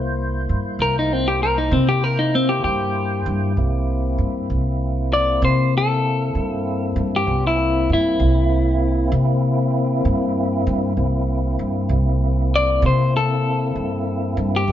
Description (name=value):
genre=slow blues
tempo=65 BPM (dotted quarters)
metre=12/8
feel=straight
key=C mixolydian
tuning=A4 = 440 Hz
part: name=tonewheel organ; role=sustained chords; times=0.0-14.7 s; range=Bb3 to C5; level=-24 LUFS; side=left 1 dB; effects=slow rotary speaker, overdrive, chorus vibrato
part: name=upright bass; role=bass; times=0.0-14.7 s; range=C2 to C3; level=-20 LUFS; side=equal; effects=none
part: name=clean electric guitar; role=melody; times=0.8-14.7 s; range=C4 to D5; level=-20 LUFS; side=left 2 dB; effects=none
room=moderate stone room reverb, RT60 1.2 s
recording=band playing live in one room, nothing above 7.5 kHz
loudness=-17 LUFS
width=side -11 dB against mid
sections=0.0-14.7 A section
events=clean electric guitar solo 0.0-14.7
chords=0.0 C7